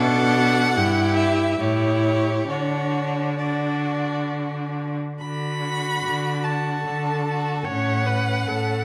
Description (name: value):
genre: classical, slow romantic movement for string quartet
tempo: 64-78 BPM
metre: 3/4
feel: rubato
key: D major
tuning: A4 = 440 Hz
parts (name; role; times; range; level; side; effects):
- rich violin; melody; 0.0-8.8 s; C#5 to B5; -28 LUFS; equal; none
- rich violin; second line; 0.0-8.8 s; C#4 to A4; -33 LUFS; equal; none
- clear viola; accompaniment; 0.0-8.8 s; D4 to C#5; -28 LUFS; equal; none
- clear cello; bass; 0.0-8.8 s; G2 to D3; -27 LUFS; equal; none
room: moderate scoring stage reverb, RT60 1.6 s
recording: none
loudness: -23 LUFS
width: mono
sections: 0.0-5.2 A section; 5.2-8.8 B section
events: none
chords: 0.0 Bm7; 0.8 Em/G; 1.6 A7; 2.5 D; 7.7 A